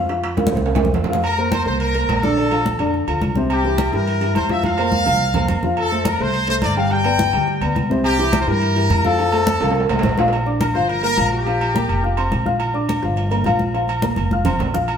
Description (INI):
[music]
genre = latin, salsa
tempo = 211 BPM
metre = 4/4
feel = straight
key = unclear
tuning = A4 = 441 Hz
[part]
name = dark baby grand piano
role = accompaniment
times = 0.0-15.0 s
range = C3 to F6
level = -22 LUFS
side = left 1 dB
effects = none
[part]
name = upright bass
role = bass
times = 0.0-15.0 s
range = F1 to G2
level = -23 LUFS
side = equal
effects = none
[part]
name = congas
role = percussion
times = 0.1-15.0 s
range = none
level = -24 LUFS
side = equal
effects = none
[part]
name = timbales and agogo bells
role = percussion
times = 0.1-15.0 s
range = none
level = -24 LUFS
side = right 2 dB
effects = none
[part]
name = bright trumpet section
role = melody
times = 1.2-12.4 s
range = G4 to G5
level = -21 LUFS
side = left 1 dB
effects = none
[sound]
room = wet stone room reverb, RT60 1.3 s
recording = band playing live in one room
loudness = -16 LUFS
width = side -7 dB against mid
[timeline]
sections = 0.0-1.2 A section; 1.2-10.3 B section; 10.3-15.0 C section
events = drum fill 0.4-1.2, 4.6-5.8, 9.6-10.3, 14.2-14.9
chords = 0.1 F; 1.2 Fsus4; 2.4 Bbmaj7; 3.5 C7; 4.6 Fsus4; 5.8 F; 6.9 G; 8.0 C7; 9.2 F; 10.3 Bb6; 10.9 Gm7; 11.5 Bb5; 12.0 F5; 12.6 Bb6; 13.2 Gm7; 13.7 Bb5; 14.3 F5